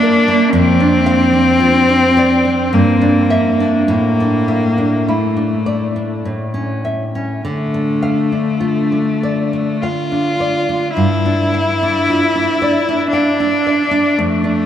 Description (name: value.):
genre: romantic duo for cello and classical guitar.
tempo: 48-59 BPM.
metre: 3/4.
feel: rubato.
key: D minor.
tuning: A4 = 438 Hz.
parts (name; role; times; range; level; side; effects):
clear cello; melody; 0.0-14.7 s; A3 to F4; -15 LUFS; left 2 dB; tape echo.
nylon-string guitar; accompaniment; 0.0-14.7 s; F2 to F5; -16 LUFS; right 1 dB; none.
room: wet cathedral reverb, RT60 5.5 s.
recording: in a vast, echoing space.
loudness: -12 LUFS.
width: side -10 dB against mid.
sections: 0.0-14.7 A section.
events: none.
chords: 0.0 Gm; 0.5 Dm/F; 2.7 Em7b5/G; 3.9 Asus4; 6.3 A; 7.4 Dm; 10.9 G5; 14.2 Dm/F.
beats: | 0.52 1.60 2.73 | 3.89 5.09 6.27 | 7.45 8.60 9.82 | 10.95 12.04 13.10 | 14.16.